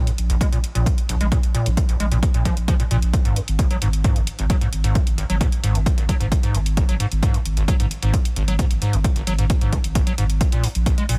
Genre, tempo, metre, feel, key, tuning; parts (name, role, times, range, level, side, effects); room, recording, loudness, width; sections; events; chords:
driving peak-time techno; 132 BPM; 4/4; straight; A4 = 438 Hz
overdriven acid bass; riff; 0.0-11.2 s; Ab1 to Ab3; -26 LUFS; equal; lush chorus, sidechain pumping, delay
electronic hi-hat; drums; 0.1-11.2 s; -33 LUFS; equal; overdrive, studio reverb
saturated sub bass; bass; 0.2-11.2 s; Ab1 to Bb1; -25 LUFS; equal; overdrive, sidechain pumping, low-pass filter
electronic kick drum; drums; 0.4-11.0 s; -22 LUFS; equal; overdrive, studio reverb
digital ambience; -20 LUFS; mono
0.0-11.2 A section
0.0 Bb5; 3.1 Gbsus2/Ab; 10.4 Absus2/Bb